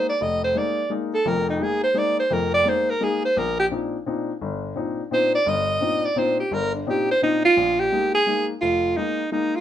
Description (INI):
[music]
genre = jazz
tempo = 171 BPM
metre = 3/4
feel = swing 64% on 8ths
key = Bb mixolydian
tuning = A4 = 439 Hz
[part]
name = breathy alto saxophone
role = melody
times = 0.0-9.6 s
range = D4 to Eb5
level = -20 LUFS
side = right 1 dB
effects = none
[part]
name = warm baby grand piano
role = accompaniment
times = 0.0-9.6 s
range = F1 to Eb4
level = -26 LUFS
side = left 4 dB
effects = none
[sound]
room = moderate studio reverb, RT60 0.5 s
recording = minimal, uncompressed stereo recording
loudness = -20 LUFS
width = side -10 dB against mid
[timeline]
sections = 0.0-7.6 A section; 7.6-9.6 B section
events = alto saxophone solo 0.0-7.6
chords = 0.0 Bb7sus4; 3.4 Cmadd9; 7.6 Bb7sus4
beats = | 0.20 0.55 0.90 | 1.25 1.60 1.96 | 2.31 2.66 3.01 | 3.36 3.71 4.06 | 4.41 4.76 5.11 | 5.46 5.81 6.16 | 6.51 6.86 7.21 | 7.56 7.91 8.26 | 8.61 8.96 9.31